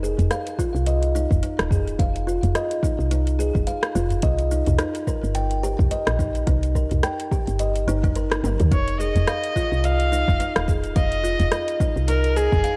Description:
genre	organic downtempo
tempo	107 BPM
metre	4/4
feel	swing 57% on 16ths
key	F minor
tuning	A4 = 440 Hz
part	kalimba	arpeggios	0.0-12.8 s	Eb4 to G5	-29 LUFS	equal	low-pass filter, digital delay
part	woody FM bass	bass	0.0-12.6 s	Eb1 to Eb2	-25 LUFS	equal	tube saturation, sidechain pumping
part	deep house drum kit	drums	0.0-12.8 s	hi-hat, rim click, shaker, toms	-31 LUFS	equal	overdrive
part	udu	percussion	0.2-12.6 s	none	-28 LUFS	equal	none
part	electronic kick drum	drums	0.6-12.6 s	none	-26 LUFS	equal	none
part	clear kamancheh	melody	8.7-12.8 s	Ab4 to F5	-27 LUFS	equal	delay
room	light reverb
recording	worn, warbling old tape, cassette tape, warbly pitch drift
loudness	-22 LUFS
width	mono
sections	0.0-12.8 A section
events	drum fill 8.3-8.7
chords	0.0 F7(no3); 4.2 Cm7; 8.7 F7(no3)

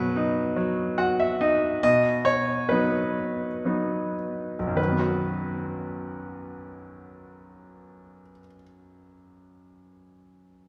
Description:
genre	classical, lyrical solo piano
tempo	48-78 BPM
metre	3/4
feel	rubato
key	B major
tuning	A4 = 436 Hz
part	bright grand piano	solo	0.0-10.7 s	B1 to F#5	-26 LUFS	equal	none
room	wet church reverb, RT60 2.7 s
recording	recorded in a church or concert hall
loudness	-25 LUFS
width	mono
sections	0.0-1.8 A section; 1.8-4.8 B section; 4.8-8.4 C section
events	slowing down 0.0-4.8; grand piano fill 0.6-1.8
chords	0.0 B

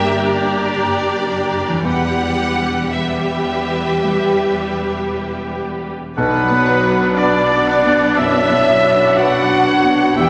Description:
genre	cinematic, emotional film score for orchestra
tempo	54-62 BPM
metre	4/4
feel	rubato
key	B minor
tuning	A4 = 442 Hz
part	rich studio violin section	melody	0.0-10.3 s	B4 to G5	-27 LUFS	equal	none
part	dark symphonic violin section	second line	0.0-10.3 s	G4 to G5	-24 LUFS	equal	none
part	dark concert grand piano	accompaniment	0.0-10.3 s	B1 to B4	-25 LUFS	equal	none
part	rich symphonic viola section	accompaniment	0.0-10.3 s	G3 to G4	-24 LUFS	equal	none
part	concert harp	arpeggios	0.0-10.3 s	E2 to B5	-27 LUFS	equal	none
part	rich symphonic double bass section	bass	0.0-10.3 s	E1 to B1	-32 LUFS	equal	none
part	warm studio cello section	bass	0.0-10.3 s	E2 to B2	-31 LUFS	equal	none
part	mellow wooden-headed alto flute	melody	6.2-10.3 s	B3 to G4	-24 LUFS	equal	none
part	clear oboe	second line	6.2-10.3 s	C#5 to F#5	-23 LUFS	equal	none
part	large flute ensemble	second line	6.2-10.3 s	B4 to G5	-22 LUFS	equal	none
part	dark French horn section	sustained chords	6.2-10.3 s	F#3 to C#5	-21 LUFS	equal	none
room	wet scoring stage reverb, RT60 1.8 s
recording	none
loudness	-16 LUFS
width	mono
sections	0.0-6.2 A section; 6.2-10.3 B section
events	none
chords	0.0 Gm; 1.9 Em; 6.2 Bmadd9

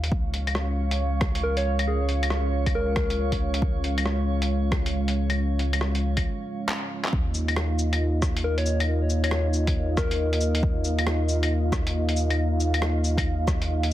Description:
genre	future garage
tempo	137 BPM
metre	4/4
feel	swing 64% on 16ths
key	unclear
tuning	A4 = 441 Hz
part	dark analog pad	sustained chords	0.0-13.9 s	Ab3 to F5	-29 LUFS	equal	chorus, sidechain pumping
part	soft dub sub bass	bass	0.0-13.9 s	Eb2	-25 LUFS	equal	none
part	lo-fi sampler-style drum kit	drums	0.0-13.9 s	cabasa, claves, handclaps, hi-hat, rim click	-30 LUFS	left 2 dB	soft clipping on snare
part	electronic kick drum	drums	0.1-13.6 s	none	-27 LUFS	equal	overdrive
part	drifting glass-harmonics texture	texture	0.1-6.2 s	Db5	-38 LUFS	right 8 dB	chorus, built-in reverb
part	soft struck synth lead	melody	1.4-3.3, 8.4-10.6 s	Ab4 to Db5	-31 LUFS	left 2 dB	chorus, cassette tape, tape echo
room	light reverb, digital ambience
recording	dense, heavily limited modern master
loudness	-22 LUFS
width	side -13 dB against mid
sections	0.0-7.1 A section; 7.1-13.9 B section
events	break 6.2-7.1; drum fill 6.7-7.1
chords	0.1 Db; 7.1 Ebsus2

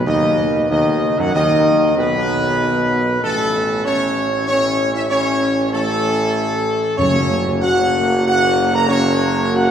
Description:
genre	classical, ceremonial fanfare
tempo	95 BPM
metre	3/4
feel	straight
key	B major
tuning	A4 = 438 Hz
part	warm trumpet section	melody	0.0-9.7 s	A4 to A#5	-18 LUFS	right 1 dB	none
part	clear trombone section	sustained chords	0.0-9.7 s	B2 to C#4	-25 LUFS	right 1 dB	none
part	mellow French horn section	sustained chords	0.0-9.7 s	A3 to A#4	-21 LUFS	left 3 dB	none
part	clear tuba	bass	0.0-9.7 s	F#1 to F#2	-21 LUFS	right 2 dB	none
part	timpani	percussion	0.0-0.4, 7.0-7.9 s	F#2 to B2	-27 LUFS	left 2 dB	none
room	wet cathedral reverb, RT60 4.9 s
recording	recorded in a church or concert hall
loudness	-14 LUFS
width	side -8 dB against mid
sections	0.0-9.7 A section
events	none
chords	0.0 B; 3.2 A; 7.0 F#

